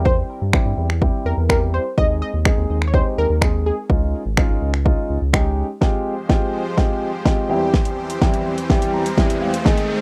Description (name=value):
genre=dance-pop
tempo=125 BPM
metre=4/4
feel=straight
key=unclear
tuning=A4 = 440 Hz
part: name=analog pluck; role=melody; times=0.0-4.1 s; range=Ab4 to Eb5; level=-26 LUFS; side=equal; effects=chorus
part: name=dark baby grand piano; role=accompaniment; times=0.0-10.0 s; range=E2 to Bb5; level=-26 LUFS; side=equal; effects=sidechain pumping
part: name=round analog bass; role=bass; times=0.0-5.6 s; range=Ab1 to G2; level=-23 LUFS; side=equal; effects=sidechain pumping
part: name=deep house drum kit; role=drums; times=0.1-9.9 s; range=finger snaps, hi-hat, kick drum, snare drum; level=-20 LUFS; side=equal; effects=none
part: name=supersaw pad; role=sustained chords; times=6.1-10.0 s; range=Eb3 to C5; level=-31 LUFS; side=equal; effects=sidechain pumping
part: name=riser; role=sound effects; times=7.7-10.0 s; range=none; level=-32 LUFS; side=equal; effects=none
room=little or no reverb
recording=rough home demo mix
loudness=-19 LUFS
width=mono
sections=0.0-5.8 A section; 5.8-10.0 B section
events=build-up 5.8-10.0; drum fill 5.8-10.0; riser 7.7-10.0; grand piano fill 8.7-9.7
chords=0.0 C/E; 2.0 Ab/Eb; 3.9 Dbadd9; 5.8 Fmadd9; 7.5 C/E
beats=| 0.06 0.54 1.02 1.50 | 1.98 2.46 2.94 3.42 | 3.90 4.38 4.86 5.34 | 5.82 6.30 6.78 7.26 | 7.74 8.22 8.70 9.18 | 9.66